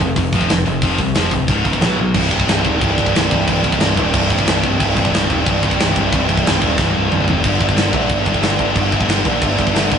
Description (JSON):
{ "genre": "heavy metal", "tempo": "182 BPM", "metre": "4/4", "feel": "straight", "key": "C minor", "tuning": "A4 = 440 Hz", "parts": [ { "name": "high-gain distorted guitar", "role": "riff", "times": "0.0-10.0 s", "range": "C2 to B3", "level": "-17 LUFS", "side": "equal", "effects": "distortion" }, { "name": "growling picked electric bass", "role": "bass", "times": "0.0-10.0 s", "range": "C1 to C2", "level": "-19 LUFS", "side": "equal", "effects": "overdrive" }, { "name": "tight metal drum kit", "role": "drums", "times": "0.0-10.0 s", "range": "crash cymbal, hi-hat, kick drum, snare drum, toms", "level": "-18 LUFS", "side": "equal", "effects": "none" } ], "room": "light reverb", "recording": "rough rehearsal-room recording, nothing above 10.5 kHz", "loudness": "-13 LUFS", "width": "side -7 dB against mid", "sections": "0.0-2.2 A section; 2.2-10.0 B section", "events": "drum fill 2.0, 6.8-7.4", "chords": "0.0 F5; 1.5 Db5; 1.8 B5; 2.2 C5; 7.4 G5" }